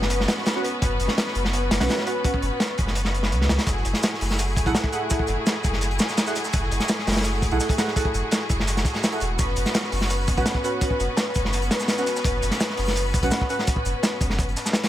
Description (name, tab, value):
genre	drum and bass, jungle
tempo	168 BPM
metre	4/4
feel	straight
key	unclear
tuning	A4 = 439 Hz
part	clear symphonic string section	sustained chords	0.0-14.9 s	A3 to B4	-28 LUFS	left 1 dB	none
part	saturated sub bass	bass	0.0-14.6 s	E1 to C#2	-26 LUFS	equal	none
part	crunchy breakbeat drum kit	drums	0.0-14.9 s	hi-hat, kick drum, snare drum	-24 LUFS	equal	none
part	deep mellow chord stab	stabs	0.6-2.4, 4.7-13.7 s	C#4 to F#5	-29 LUFS	right 2 dB	chorus, cassette tape, dub echo
part	crunchy breakbeat drum kit	drums	3.7-14.9 s	hi-hat, shaker, snare drum	-33 LUFS	equal	high-pass filter on hats, high-pass filter on snare, high-pass filter on perc, high-pass filter on room
room	light reverb, small room ambience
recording	none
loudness	-21 LUFS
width	side -12 dB against mid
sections	0.0-14.9 A section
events	none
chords	0.0 Bsus2/F#; 3.7 F#m9; 9.4 Bsus2/F#